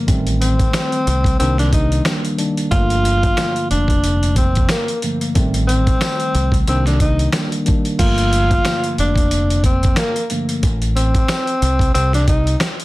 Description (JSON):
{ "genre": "hip hop, boom-bap hip-hop", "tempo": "91 BPM", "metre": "4/4", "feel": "swing 58% on 16ths", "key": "G minor", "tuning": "A4 = 439 Hz", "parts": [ { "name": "mellow tine electric piano", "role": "accompaniment", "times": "0.0-10.6 s", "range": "C2 to D4", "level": "-22 LUFS", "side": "equal", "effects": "slow stereo tremolo, cassette tape, high-pass filter, low-pass filter, plate reverb" }, { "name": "deep dub fingered electric bass", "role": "bass", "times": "0.1-12.5 s", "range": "F1 to C2", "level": "-18 LUFS", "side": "equal", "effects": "none" }, { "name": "dusty soul sampler-style drum kit", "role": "drums", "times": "0.1-12.8 s", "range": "crash cymbal, hi-hat, kick drum, snare drum", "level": "-19 LUFS", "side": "equal", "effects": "none" }, { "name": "breathy tenor saxophone", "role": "melody", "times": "0.4-12.6 s", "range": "Bb3 to F4", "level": "-20 LUFS", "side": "equal", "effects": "high-pass filter, low-pass filter, plate reverb, ping-pong delay" }, { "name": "tambourine", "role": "percussion", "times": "0.7-12.8 s", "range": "none", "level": "-34 LUFS", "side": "left 6 dB", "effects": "none" } ], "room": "light reverb", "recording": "dense, heavily limited modern master, vinyl crackle", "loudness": "-14 LUFS", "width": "side -19 dB against mid", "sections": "0.0-8.0 A section; 8.0-12.8 A section", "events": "none", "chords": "0.1 Am7b5; 1.4 Cm7; 2.7 Gm7; 5.4 Am7b5; 6.7 Cm7; 8.0 Gm7; 10.6 Am; 11.9 Cm", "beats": "| 0.08 0.74 1.40 2.06 | 2.72 3.38 4.04 4.70 | 5.36 6.01 6.67 7.33 | 7.99 8.65 9.31 9.97 | 10.63 11.29 11.95 12.61" }